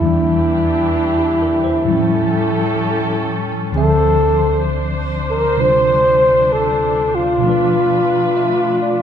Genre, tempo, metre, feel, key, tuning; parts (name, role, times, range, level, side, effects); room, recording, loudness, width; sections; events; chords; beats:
jazz ballad; 65 BPM; 4/4; swing 66% on 8ths; A4 = 440 Hz
dark flugelhorn; melody; 0.0-9.0 s; E4 to C5; -15 LUFS; equal
tine electric piano; accompaniment; 0.0-9.0 s; D2 to E5; -18 LUFS; equal; medium stereo tremolo
muted studio string section; sustained chords; 0.0-9.0 s; E3 to C5; -23 LUFS; right 1 dB
wet recital hall reverb, RT60 1.3 s; recorded in a church or concert hall; -13 LUFS; side -8 dB against mid
0.0-9.0 A section
0.0 Em7b5; 1.9 A7b13; 3.7 Dm9; 7.4 Bm7b5
| 0.02 0.95 1.87 2.79 | 3.71 4.63 5.56 6.48 | 7.41 8.35